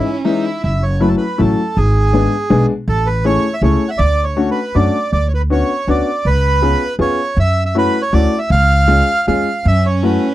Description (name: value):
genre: musette waltz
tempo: 159 BPM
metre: 3/4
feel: straight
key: F# minor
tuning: A4 = 440 Hz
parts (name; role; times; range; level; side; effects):
- bandoneon; melody; 0.0-10.3 s; E4 to F#5; -18 LUFS; right 2 dB; none
- clear violin; second line; 0.0-0.6, 9.6-10.3 s; C#4 to E4; -23 LUFS; right 5 dB; none
- clear upright piano; accompaniment; 0.0-10.2 s; E3 to G#4; -16 LUFS; left 3 dB; none
- upright bass; bass; 0.6-10.1 s; F#1 to F#2; -15 LUFS; equal; none
room: little or no reverb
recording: dry, close 1970s-style studio recording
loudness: -13 LUFS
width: side -14 dB against mid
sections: 0.6-10.3 A section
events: none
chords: 0.0 C#madd9; 0.6 F#m7; 1.8 G#dim; 2.9 Amaj7; 4.0 Dmaj7; 5.1 Bmadd9/D; 6.2 C#7; 7.4 F#m7; 8.5 C#; 9.6 F#m7